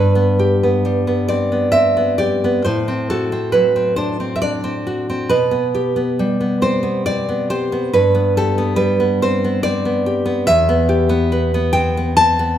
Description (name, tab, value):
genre	romantic piece for solo classical guitar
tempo	69 BPM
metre	3/4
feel	uneven beats, rubato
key	G major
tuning	A4 = 440 Hz
part	nylon-string guitar	solo	0.0-12.6 s	E2 to A5	-14 LUFS	equal	none
room	moderate recital hall reverb, RT60 1.4 s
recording	recorded in a church or concert hall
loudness	-15 LUFS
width	side -10 dB against mid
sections	0.0-12.6 A section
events	none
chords	0.0 G; 2.7 D7/A; 5.3 G/B; 7.9 G; 10.5 Em